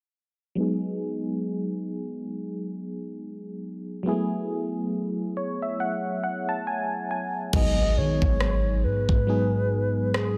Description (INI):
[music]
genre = contemporary R&B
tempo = 69 BPM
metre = 4/4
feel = swing 58% on 16ths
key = unclear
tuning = A4 = 440 Hz
[part]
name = FM electric piano with tremolo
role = accompaniment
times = 0.6-10.4 s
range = F#3 to A5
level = -30 LUFS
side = equal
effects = low-pass filter
[part]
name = reedy wooden-headed alto flute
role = melody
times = 7.5-10.4 s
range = G#4 to D#5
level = -30 LUFS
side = equal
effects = delay
[part]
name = warm 808-style bass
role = bass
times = 7.5-10.4 s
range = G#1 to D#3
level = -28 LUFS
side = equal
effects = none
[part]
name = smooth R&B drum kit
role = drums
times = 7.5-10.4 s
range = crash cymbal, kick drum, rim click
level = -28 LUFS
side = equal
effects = none
[part]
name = impact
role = sound effects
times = 7.7-10.4 s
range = none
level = -36 LUFS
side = equal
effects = none
[sound]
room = little or no reverb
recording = none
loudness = -27 LUFS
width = mono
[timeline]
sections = 0.6-7.5 A section; 7.5-10.4 B section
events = filter sweep on FM electric piano 0.6-7.5; FM electric piano fill 4.9-7.5; hi-hats muted 7.5-10.4; impact 7.5-10.4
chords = 0.6 G#m7; 4.1 F#m11; 7.5 G#m7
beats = | 0.58 1.45 2.32 3.19 | 4.06 4.92 5.79 6.66 | 7.53 8.40 9.27 10.14